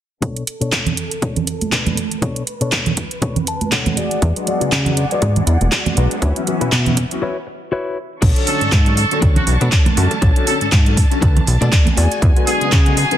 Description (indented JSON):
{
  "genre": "filtered disco house",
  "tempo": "120 BPM",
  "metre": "4/4",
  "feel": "swing 56% on 16ths",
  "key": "B dorian",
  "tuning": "A4 = 440 Hz",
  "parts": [
    { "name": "warm symphonic violin section", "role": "sustained chords", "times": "0.2-13.2 s", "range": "C#4 to C#6", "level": "-27 LUFS", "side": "equal", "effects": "vintage 12-bit sampler grit, sidechain pumping, low-pass filter" },
    { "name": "direct-recorded clean electric guitar", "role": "riff", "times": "0.2-13.0 s", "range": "B2 to A5", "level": "-24 LUFS", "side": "left 3 dB", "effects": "sidechain pumping, low-pass filter" },
    { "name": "electronic kick drum", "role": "drums", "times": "0.2-12.8 s", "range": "none", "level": "-16 LUFS", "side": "equal", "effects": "high-pass filter on kick" },
    { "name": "house drum kit", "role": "drums", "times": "0.2-13.2 s", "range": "crash cymbal, handclaps, hi-hat", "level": "-21 LUFS", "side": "right 1 dB", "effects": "sidechain pumping on hats, sidechain pumping on cymbals" },
    { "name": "maracas and congas", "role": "percussion", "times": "0.2-13.2 s", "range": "none", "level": "-23 LUFS", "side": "right 5 dB", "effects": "sidechain pumping on perc, low-pass filter on perc" },
    { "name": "plucky analog bass", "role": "bass", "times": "4.2-13.1 s", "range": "E1 to C#3", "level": "-16 LUFS", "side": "equal", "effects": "sidechain pumping, low-pass filter" },
    { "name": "clear concert grand piano", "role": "accompaniment", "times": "4.4-13.2 s", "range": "D3 to D4", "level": "-23 LUFS", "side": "left 3 dB", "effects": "phaser, vintage 12-bit sampler grit, sidechain pumping, low-pass filter" },
    { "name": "muted trumpet section", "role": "melody", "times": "8.5-13.2 s", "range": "F#4 to A4", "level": "-22 LUFS", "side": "right 2 dB", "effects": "sidechain pumping, low-pass filter" }
  ],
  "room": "light reverb, studio ambience",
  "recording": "dense, heavily limited modern master",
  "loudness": "-14 LUFS",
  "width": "side -11 dB against mid",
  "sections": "0.2-8.2 A section; 8.2-13.2 B section",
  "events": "filter sweep 0.2-8.2; clean electric guitar fill 3.2-4.2; break 7.2-8.2",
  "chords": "0.2 Bm9; 4.0 E9; 6.2 Dmaj13 (rootless); 8.2 Bm9; 12.0 E9"
}